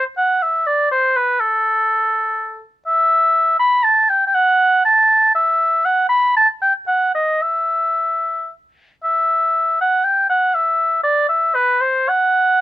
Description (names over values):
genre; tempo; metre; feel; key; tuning
classical, baroque-style fantasia for unaccompanied oboe; 107-125 BPM; 3/4; rubato; E minor; A4 = 440 Hz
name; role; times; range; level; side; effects
warm oboe; solo; 0.0-12.6 s; A4 to B5; -14 LUFS; equal; none
room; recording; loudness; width
little or no reverb; close, detailed microphones; -14 LUFS; side -14 dB against mid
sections
0.0-9.0 A section; 9.0-12.6 B section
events
none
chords
none